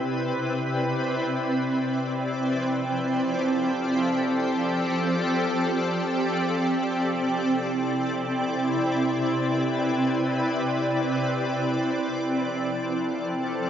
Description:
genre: ambient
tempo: free time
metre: none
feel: none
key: C major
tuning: A4 = 440 Hz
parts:
  - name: shimmering ambient pad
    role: solo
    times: 0.0-13.7 s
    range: C3 to D5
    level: -23 LUFS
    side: equal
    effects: chorus, built-in reverb, diffuse ambient delay
room: wet scoring stage reverb, RT60 2.1 s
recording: nothing above 7.9 kHz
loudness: -23 LUFS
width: side -9 dB against mid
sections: 0.0-6.9 A section; 6.9-13.7 B section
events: none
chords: 0.0 Cmaj9; 2.0 F69; 6.9 Cmaj9; 11.7 F69

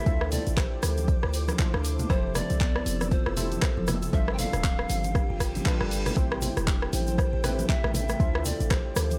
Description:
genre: afro house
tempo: 118 BPM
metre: 4/4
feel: swing 58% on 16ths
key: unclear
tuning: A4 = 442 Hz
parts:
  - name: breathy mellow polished pan flute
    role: melody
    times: 0.0-9.2 s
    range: C5 to G5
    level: -38 LUFS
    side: equal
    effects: delay
  - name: ethereal airy pad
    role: sustained chords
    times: 0.0-9.2 s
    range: G4 to E6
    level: -44 LUFS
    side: equal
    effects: ensemble chorus, built-in reverb, tremolo, sidechain pumping
  - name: buzzing kalimba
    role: arpeggios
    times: 0.0-9.1 s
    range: C3 to D5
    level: -38 LUFS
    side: equal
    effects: sidechain pumping, delay
  - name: warm analog keys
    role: stabs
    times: 0.0-9.2 s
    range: C4 to C5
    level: -40 LUFS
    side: equal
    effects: chorus, sidechain pumping, delay
  - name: warm 808-style bass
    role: bass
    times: 0.1-9.2 s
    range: D1 to D2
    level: -32 LUFS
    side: equal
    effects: sidechain pumping
  - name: deep house drum kit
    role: drums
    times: 0.1-9.2 s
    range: handclaps, hi-hat, rim click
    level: -34 LUFS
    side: equal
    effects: overdrive
  - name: electronic kick drum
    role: drums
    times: 0.1-8.8 s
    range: none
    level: -28 LUFS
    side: equal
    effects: overdrive
  - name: tube shaker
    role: percussion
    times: 0.1-9.2 s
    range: none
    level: -42 LUFS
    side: equal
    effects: none
  - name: congas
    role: percussion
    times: 0.3-9.2 s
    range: none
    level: -38 LUFS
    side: equal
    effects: none
  - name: reverse cymbal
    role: sound effects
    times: 5.3-6.2 s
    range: none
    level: -42 LUFS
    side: equal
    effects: none
room: small room reverb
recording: none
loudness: -26 LUFS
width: mono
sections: 0.0-9.2 A section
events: reverse cymbal 5.3-6.2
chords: 0.1 Dm7; 2.1 Fmaj7; 4.1 G7sus4; 6.2 Am7; 8.2 Dm7

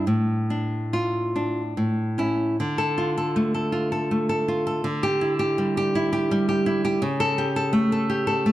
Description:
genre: romantic piece for solo classical guitar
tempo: 69-85 BPM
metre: 3/4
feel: rubato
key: D minor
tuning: A4 = 441 Hz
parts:
  - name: nylon-string guitar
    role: solo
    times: 0.0-8.5 s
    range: A2 to A4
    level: -21 LUFS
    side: equal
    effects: none
room: moderate recital hall reverb, RT60 1.4 s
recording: dark, warm production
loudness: -21 LUFS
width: side -14 dB against mid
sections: 0.0-2.6 A section; 2.6-8.5 B section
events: none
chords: 0.1 Dm/A; 1.8 A; 2.6 Dm; 4.9 Dsus24; 7.0 A7/C#

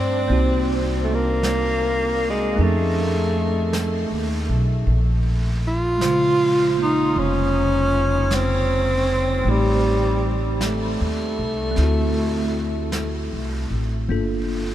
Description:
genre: jazz ballad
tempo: 52 BPM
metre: 4/4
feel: swing 68% on 8ths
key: unclear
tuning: A4 = 438 Hz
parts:
  - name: breathy tenor saxophone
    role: melody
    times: 0.0-12.9 s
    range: G3 to F4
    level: -22 LUFS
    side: equal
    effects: tape echo
  - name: bell-like tine electric piano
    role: accompaniment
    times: 0.0-14.7 s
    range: Db3 to C5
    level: -27 LUFS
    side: right 1 dB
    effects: medium stereo tremolo
  - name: upright bass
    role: bass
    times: 0.0-14.7 s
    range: F1 to G2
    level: -22 LUFS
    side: equal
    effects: none
  - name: vintage brush drum kit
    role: drums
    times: 0.3-14.7 s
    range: brushed snare drum, hi-hat, snare drum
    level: -33 LUFS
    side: right 1 dB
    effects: none
room: moderate huge ambient reverb, RT60 7.6 s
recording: dreamy mix soaked in reverb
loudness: -18 LUFS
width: side -12 dB against mid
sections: 0.0-14.7 A section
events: none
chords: 0.3 Cm7b5; 2.6 F7alt; 4.9 Bbm9; 9.5 Am7b5; 11.8 D7; 14.1 Gm9

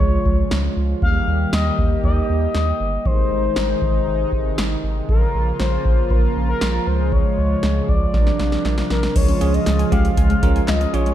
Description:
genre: synth-pop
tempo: 118 BPM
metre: 4/4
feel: straight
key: unclear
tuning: A4 = 443 Hz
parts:
  - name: expressive synth lead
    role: melody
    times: 0.0-11.1 s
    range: Bb4 to F5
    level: -24 LUFS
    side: left 4 dB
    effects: chorus, tape echo
  - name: chorused pulse-width pad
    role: sustained chords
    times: 0.0-11.1 s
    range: C3 to G4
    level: -24 LUFS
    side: right 2 dB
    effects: none
  - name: round analog bass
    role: bass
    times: 0.0-11.1 s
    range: G1 to Eb2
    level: -21 LUFS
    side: equal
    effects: none
  - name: electro analog drum machine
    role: drums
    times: 0.0-11.1 s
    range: crash cymbal, handclaps, hi-hat, kick drum, snare drum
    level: -21 LUFS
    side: equal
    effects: none
  - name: wide unison pluck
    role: arpeggios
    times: 9.2-11.1 s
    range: Ab3 to Ab5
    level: -27 LUFS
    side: left 4 dB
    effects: tape echo
  - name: bell-like tine electric piano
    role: accompaniment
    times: 9.4-11.1 s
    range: Db4 to Bb4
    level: -26 LUFS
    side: right 6 dB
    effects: auto-pan
room: light reverb, digital ambience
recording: none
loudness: -16 LUFS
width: side -11 dB against mid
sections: 0.0-9.2 A section; 9.2-11.1 B section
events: drum fill 8.1-9.2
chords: 0.0 Db; 1.0 Eb; 3.1 Ab; 5.1 Bbm; 6.9 Db; 8.1 Bbadd9; 9.2 Db

